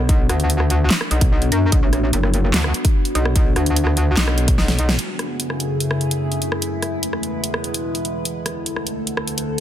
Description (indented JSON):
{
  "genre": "heavy wobble dubstep",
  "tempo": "147 BPM",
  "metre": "4/4",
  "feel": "half-time",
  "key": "unclear",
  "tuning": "A4 = 440 Hz",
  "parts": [
    { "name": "evolving wavetable pad", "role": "sustained chords", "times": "0.0-9.6 s", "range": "D2 to B4", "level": "-24 LUFS", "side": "left 1 dB", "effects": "chorus, built-in reverb, phaser, sidechain pumping" },
    { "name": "metallic wobble bass", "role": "bass", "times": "0.0-5.0 s", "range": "F#1 to F#2", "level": "-18 LUFS", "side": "equal", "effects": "chorus, overdrive" },
    { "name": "big-room dance drum kit", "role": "drums", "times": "0.1-9.5 s", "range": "handclaps, hi-hat, rim click, snare drum", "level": "-22 LUFS", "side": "equal", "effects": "none" },
    { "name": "electronic kick drum", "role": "drums", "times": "0.1-4.6 s", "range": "none", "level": "-17 LUFS", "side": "equal", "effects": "overdrive" }
  ],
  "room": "digital ambience",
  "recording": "dense, heavily limited modern master",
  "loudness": "-17 LUFS",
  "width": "side -11 dB against mid",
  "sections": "0.0-5.0 A section; 5.0-9.6 B section",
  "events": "drop 0.0-5.0; drum fill 4.6-5.0; band accent 4.9",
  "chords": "0.0 Bm; 5.0 F#m7; 6.6 E; 8.3 Dsus2"
}